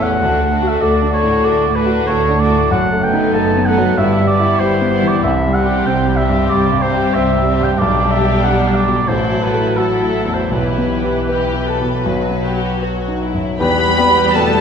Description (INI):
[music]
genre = classical, romantic movement for piano and orchestra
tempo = 77-98 BPM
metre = 4/4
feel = rubato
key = E minor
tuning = A4 = 440 Hz
[part]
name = rich studio violin section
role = melody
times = 0.0-14.6 s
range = D#4 to B5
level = -24 LUFS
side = left 2 dB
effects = none
[part]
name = warm grand piano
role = melody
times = 0.0-14.6 s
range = A1 to B4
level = -18 LUFS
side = left 2 dB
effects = none
[part]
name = mellow oboe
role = second line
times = 0.0-14.5 s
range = A4 to A5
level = -19 LUFS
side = right 2 dB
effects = none
[part]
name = rich studio violin section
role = second line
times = 0.0-14.6 s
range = B3 to B4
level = -24 LUFS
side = left 4 dB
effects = none
[part]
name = warm studio viola section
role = accompaniment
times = 0.0-14.6 s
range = E3 to B3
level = -22 LUFS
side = equal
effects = none
[part]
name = dark studio double bass section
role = bass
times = 0.0-14.6 s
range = F#1 to E2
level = -23 LUFS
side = right 2 dB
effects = none
[part]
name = warm studio cello section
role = bass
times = 0.0-13.4 s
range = D2 to C3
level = -23 LUFS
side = right 3 dB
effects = none
[part]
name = mellow clarinet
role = second line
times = 13.6-14.6 s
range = A4 to B4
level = -22 LUFS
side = equal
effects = none
[part]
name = mellow hollow wooden flute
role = second line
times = 13.6-14.6 s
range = A5 to B5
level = -22 LUFS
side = left 1 dB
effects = none
[part]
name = mellow bassoon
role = accompaniment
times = 13.6-14.5 s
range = G3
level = -23 LUFS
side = equal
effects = none
[part]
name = dark French horn section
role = sustained chords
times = 13.6-14.6 s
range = A3 to B3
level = -22 LUFS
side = left 1 dB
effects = none
[part]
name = dark trombone section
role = sustained chords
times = 13.6-14.6 s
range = G3 to B3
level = -26 LUFS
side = right 6 dB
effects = none
[part]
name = warm trumpet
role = stabs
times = 13.6-14.6 s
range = B4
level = -22 LUFS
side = right 3 dB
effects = none
[sound]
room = wet scoring stage reverb, RT60 1.9 s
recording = minimal, uncompressed stereo recording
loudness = -13 LUFS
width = side -7 dB against mid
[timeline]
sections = 0.0-13.6 A section; 13.6-14.6 B section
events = none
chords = 0.2 D; 2.7 B7/F#; 4.0 Em/G; 5.2 C5; 7.8 G/B; 9.1 Am69; 10.5 Em/B; 12.1 B; 13.6 Em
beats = | 0.20 0.83 1.45 2.09 | 2.71 3.35 3.98 4.61 | 5.24 5.87 6.51 7.17 | 7.82 8.45 9.09 9.78 | 10.52 11.28 12.06 12.83 | 13.60 14.35